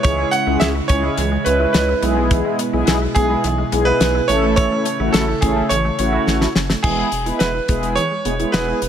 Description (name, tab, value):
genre	synth-pop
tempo	106 BPM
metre	4/4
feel	straight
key	E major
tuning	A4 = 441 Hz
part	bright concert grand piano	melody	0.0-8.9 s	G#4 to F#5	-20 LUFS	right 3 dB	digital delay
part	mellow synth brass	accompaniment	0.0-8.8 s	G#3 to B4	-21 LUFS	equal	chorus
part	chorused pulse-width pad	sustained chords	0.0-6.8 s	B2 to E4	-25 LUFS	right 1 dB	none
part	resonant blip pluck	arpeggios	0.0-8.9 s	E3 to E5	-28 LUFS	left 2 dB	chorus, digital delay
part	round analog bass	bass	0.0-8.9 s	E1 to C#2	-22 LUFS	equal	none
part	damped 70s drum kit	drums	0.0-8.9 s	crash cymbal, hi-hat, kick drum, snare drum	-20 LUFS	left 1 dB	none
room	light reverb, small room ambience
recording	none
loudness	-15 LUFS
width	side -9 dB against mid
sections	0.0-6.8 A section; 6.8-8.9 B section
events	drum fill 6.3-6.8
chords	0.0 C#m; 2.0 E/B; 4.3 A; 6.8 E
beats	| 0.05 0.61 1.18 1.74 | 2.31 2.88 3.44 4.01 | 4.57 5.14 5.71 6.27 | 6.84 7.40 7.97 8.54